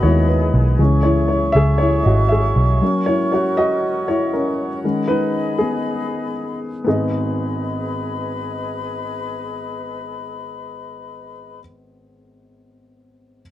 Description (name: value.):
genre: pop.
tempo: 119 BPM.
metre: 4/4.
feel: straight.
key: G# minor.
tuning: A4 = 444 Hz.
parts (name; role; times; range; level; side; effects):
dark upright piano; accompaniment; 0.0-13.4 s; G#1 to E5; -19 LUFS; left 1 dB; none.
breathy flute section; sustained chords; 0.0-11.6 s; C#4 to C#6; -27 LUFS; equal; none.
vintage muted picked electric bass; bass; 0.0-2.8 s; G#1 to D#2; -16 LUFS; equal; none.
room: little or no reverb.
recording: dry, close 1970s-style studio recording.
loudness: -17 LUFS.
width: side -13 dB against mid.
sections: 0.0-6.9 A section; 6.9-10.9 B section.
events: upright piano solo 0.0-6.9.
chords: 0.0 G#m; 0.8 C#m; 2.8 F#; 4.8 B6; 6.9 G#m.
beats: 0.29 | 0.79 1.30 1.80 2.31 | 2.81 3.32 3.83 4.33 | 4.84 5.34 5.85 6.35 | 6.86 7.37 7.87 8.38 | 8.88 9.39 9.89 10.40.